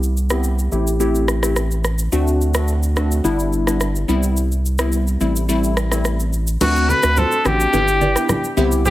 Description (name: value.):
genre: afrobeats.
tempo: 107 BPM.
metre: 4/4.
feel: straight.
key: G major.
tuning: A4 = 439 Hz.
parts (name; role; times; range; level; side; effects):
round analog bass; bass; 0.0-8.9 s; G1 to D2; -19 LUFS; equal; none.
afro-pop drum kit; drums; 0.0-8.9 s; crash cymbal, rim click, shaker; -24 LUFS; equal; none.
glassy wavetable pluck; accompaniment; 0.3-8.8 s; G3 to G4; -21 LUFS; left 1 dB; chorus, low-pass filter.
clear trumpet; melody; 6.6-8.9 s; F#4 to B4; -18 LUFS; equal; digital delay.
nylon-string guitar; riff; 6.6-8.9 s; F#4 to E5; -27 LUFS; right 6 dB; digital delay.
congas; percussion; 6.6-8.9 s; none; -26 LUFS; left 1 dB; none.
room: light reverb, studio reverb.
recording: heavily compressed radio sound.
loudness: -16 LUFS.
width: side -15 dB against mid.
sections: 0.0-6.6 A section; 6.6-8.9 B section.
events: filter sweep on synth pluck 0.0-6.6; kick muted 4.4-6.6, 6.6-8.9.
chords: 0.0 Cmaj7; 0.7 Am7; 2.1 D7; 3.2 G6; 4.1 Cmaj7; 5.2 Am7; 6.6 D7; 7.7 G6.